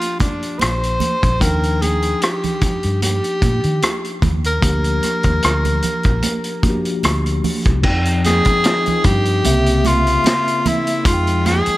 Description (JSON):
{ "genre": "lush 1970s-style soul", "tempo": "75 BPM", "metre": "4/4", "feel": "swing 54% on 16ths", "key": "unclear", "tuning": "A4 = 438 Hz", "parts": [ { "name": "breathy tenor saxophone", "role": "melody", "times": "0.0-11.8 s", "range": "D4 to C5", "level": "-20 LUFS", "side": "equal", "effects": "tape echo" }, { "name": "mellow tine electric piano", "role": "accompaniment", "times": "0.0-11.8 s", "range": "Db3 to G5", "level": "-23 LUFS", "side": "left 2 dB", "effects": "slow stereo tremolo" }, { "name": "vintage drum kit", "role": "drums", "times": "0.0-11.8 s", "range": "crash cymbal, hi-hat, kick drum, rim click, snare drum", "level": "-19 LUFS", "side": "equal", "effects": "none" }, { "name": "congas", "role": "percussion", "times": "0.2-11.7 s", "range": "none", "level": "-26 LUFS", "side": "right 5 dB", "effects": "none" }, { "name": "vintage muted fingered electric bass", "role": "bass", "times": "0.6-11.7 s", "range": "Bb1 to Eb3", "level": "-19 LUFS", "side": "equal", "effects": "none" }, { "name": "mellow French horn section", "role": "sustained chords", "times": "7.9-11.8 s", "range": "Db3 to E5", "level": "-29 LUFS", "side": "left 1 dB", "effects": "none" } ], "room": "studio reverb", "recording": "none", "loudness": "-15 LUFS", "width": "side -17 dB against mid", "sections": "0.0-7.8 A section; 7.8-11.8 B section", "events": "none", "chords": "0.0 Gm7; 1.4 Ebmaj9; 4.6 Gm7; 7.8 Fm9; 9.4 C7b9; 11.1 Fm9", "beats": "0.61 | 1.41 2.22 3.02 3.83 | 4.63 5.44 6.24 7.04 | 7.85 8.65 9.45 10.25 | 11.05" }